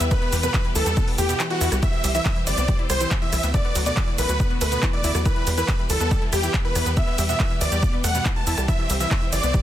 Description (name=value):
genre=uplifting trance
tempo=140 BPM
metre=4/4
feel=straight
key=E minor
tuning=A4 = 440 Hz
part: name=big supersaw lead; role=melody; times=0.0-9.6 s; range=F#4 to A5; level=-26 LUFS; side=right 1 dB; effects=cassette tape, sidechain pumping, tape echo
part: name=dark grand piano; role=second line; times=0.0-9.6 s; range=F#4 to A5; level=-32 LUFS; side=equal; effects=none
part: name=bright studio string section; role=sustained chords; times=0.0-9.6 s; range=D3 to C5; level=-32 LUFS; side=equal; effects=sidechain pumping
part: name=analog pluck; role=arpeggios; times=0.0-9.6 s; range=E2 to E4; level=-30 LUFS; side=left 2 dB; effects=chorus, sidechain pumping, tape echo
part: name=tight sequencer bass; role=bass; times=0.0-9.6 s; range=G1 to E2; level=-24 LUFS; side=equal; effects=sidechain pumping
part: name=punchy analog drum machine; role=drums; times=0.0-9.6 s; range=handclaps, hi-hat, ride cymbal, rim click, shaker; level=-28 LUFS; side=right 1 dB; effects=sidechain pumping on hats, sidechain pumping on perc, sidechain pumping on cymbals
part: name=electronic kick drum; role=drums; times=0.1-9.6 s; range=none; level=-22 LUFS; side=equal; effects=none
room=little or no reverb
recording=dense, heavily limited modern master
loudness=-19 LUFS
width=side -12 dB against mid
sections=0.0-9.6 A section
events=kick drops out 1.4-1.8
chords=0.0 Em; 1.8 C; 3.5 D6; 5.3 Em; 8.7 C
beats=| 0.11 0.54 0.97 1.40 | 1.83 2.25 2.68 3.11 | 3.54 3.97 4.40 4.83 | 5.25 5.68 6.11 6.54 | 6.97 7.40 7.83 8.26 | 8.68 9.11 9.54